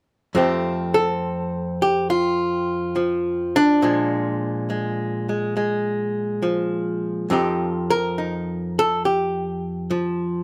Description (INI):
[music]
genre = solo jazz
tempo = 69 BPM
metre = 4/4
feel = swing 69% on 8ths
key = F mixolydian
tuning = A4 = 441 Hz
[part]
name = archtop guitar, miked and amplified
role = solo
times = 0.3-10.4 s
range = F2 to Bb4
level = -22 LUFS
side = equal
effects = none
[sound]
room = light reverb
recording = none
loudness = -22 LUFS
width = mono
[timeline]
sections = 0.3-10.4 A section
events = none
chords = 0.3 Fadd9; 3.8 Bb7; 7.3 Fsus2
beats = | 0.33 1.20 2.07 2.94 | 3.81 4.68 5.55 6.42 | 7.29 8.16 9.03 9.89